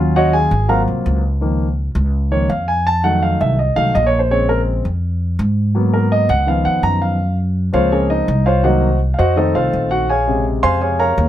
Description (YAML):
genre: Afro-Cuban jazz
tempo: 166 BPM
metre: 4/4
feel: straight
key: Db major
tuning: A4 = 440 Hz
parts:
  - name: warm concert grand piano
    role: accompaniment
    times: 0.0-11.3 s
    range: C3 to C6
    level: -16 LUFS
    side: equal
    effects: none
  - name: upright bass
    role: bass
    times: 0.0-11.3 s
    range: Ab1 to Ab2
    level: -17 LUFS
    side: equal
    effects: none
room: light reverb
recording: close, detailed microphones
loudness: -14 LUFS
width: side -12 dB against mid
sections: 0.0-1.4 A section; 1.4-11.3 A section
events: grand piano solo 0.0-11.3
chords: 0.0 Ebm7; 0.7 Ab13; 1.4 Db69; 2.9 F7b9; 4.3 Bbm7; 5.8 Abm9; 6.5 Db7; 7.2 Gbmaj9#11; 8.6 Cm7b5; 9.4 F7; 10.1 Bbm9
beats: 0.33 0.70 1.06 | 1.42 1.78 2.14 2.50 | 2.87 3.23 3.59 3.95 | 4.31 4.67 5.03 5.39 | 5.76 6.12 6.48 6.84 | 7.20 7.56 7.92 8.29 | 8.65 9.01 9.37 9.73 | 10.09 10.45 10.81 11.18